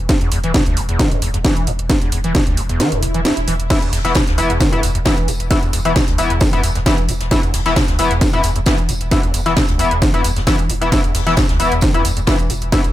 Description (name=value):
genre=driving peak-time techno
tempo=133 BPM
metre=4/4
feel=straight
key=unclear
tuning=A4 = 440 Hz
part: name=warm sub bass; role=bass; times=0.0-12.9 s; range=E1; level=-22 LUFS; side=equal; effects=tube saturation, sidechain pumping, low-pass filter
part: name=overdriven acid bass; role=riff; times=0.1-12.9 s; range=E1 to E3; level=-22 LUFS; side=equal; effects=distortion, lush chorus, sidechain pumping, ping-pong delay
part: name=electronic kick drum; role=drums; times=0.1-12.8 s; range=none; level=-18 LUFS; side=equal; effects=none
part: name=techno drum kit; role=drums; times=0.1-12.9 s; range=crash cymbal, hi-hat, snare drum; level=-20 LUFS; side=equal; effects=overdrive, sidechain pumping on hats, sidechain pumping on cymbals
part: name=swell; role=sound effects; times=3.0-3.7 s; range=none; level=-26 LUFS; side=right 1 dB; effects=none
part: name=sync-sweep polysynth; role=stabs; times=3.7-12.8 s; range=E3 to E4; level=-20 LUFS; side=left 3 dB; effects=chorus, cassette tape, sidechain pumping, ping-pong delay
part: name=jazz brush drum kit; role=drums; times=3.7-12.8 s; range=hi-hat, snare drum, tambourine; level=-29 LUFS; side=left 1 dB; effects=sidechain pumping on hats, high-pass filter on hats, high-pass filter on snare, sidechain pumping on perc, high-pass filter on perc, high-pass filter on room
room=small room ambience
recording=none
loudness=-14 LUFS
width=side -14 dB against mid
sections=0.0-12.9 A section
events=filter sweep on acid bass 0.0-12.9; kick drops out 2.8-3.7; swell 3.0-3.7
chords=0.0 E5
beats=| 0.09 0.55 1.00 1.45 | 1.90 2.35 2.80 3.25 | 3.70 4.15 4.61 5.06 | 5.51 5.96 6.41 6.86 | 7.31 7.76 8.21 8.66 | 9.12 9.57 10.02 10.47 | 10.92 11.37 11.82 12.27 | 12.72